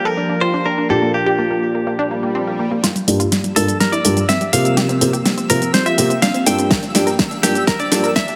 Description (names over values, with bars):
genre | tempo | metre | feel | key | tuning
progressive house | 124 BPM | 4/4 | straight | G dorian | A4 = 439 Hz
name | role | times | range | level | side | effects
direct-recorded clean electric guitar | melody | 0.0-8.4 s | G4 to G5 | -23 LUFS | equal | sidechain pumping, low-pass filter, digital delay
lush unison pad | sustained chords | 0.0-8.4 s | F3 to G4 | -27 LUFS | equal | chorus, phaser, sidechain pumping
felt-muted upright piano | stabs | 0.0-8.0 s | G2 to Bb4 | -22 LUFS | equal | sidechain pumping, low-pass filter, tape echo
unison pluck | arpeggios | 0.1-8.3 s | G3 to Bb4 | -25 LUFS | equal | sidechain pumping, tape echo
swell | sound effects | 2.1-2.8 s | none | -31 LUFS | equal | none
pop drum kit | drums | 2.8-8.4 s | hi-hat, shaker, snare drum | -21 LUFS | equal | small room ambience, sidechain pumping on hats, sidechain pumping on perc
twinkling granular texture | texture | 3.9-8.4 s | E6 | -33 LUFS | equal | built-in reverb, sidechain pumping
electronic kick drum | drums | 6.7-8.3 s | none | -24 LUFS | equal | small room ambience
room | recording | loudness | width
moderate lush hall reverb, RT60 2.8 s | high-pass filter | -17 LUFS | mono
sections
0.0-2.8 A section; 2.8-8.4 B section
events
filter sweep on felt piano 0.0-2.8, 2.8-8.4; filter sweep on analog synth pad 0.0-2.8; swell 2.1-2.8; build-up 2.8-8.4; drum fill 2.8-8.4; filter sweep on synth pluck 2.8-8.4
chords
0.0 Gm7; 0.9 Bb6; 2.8 Gm7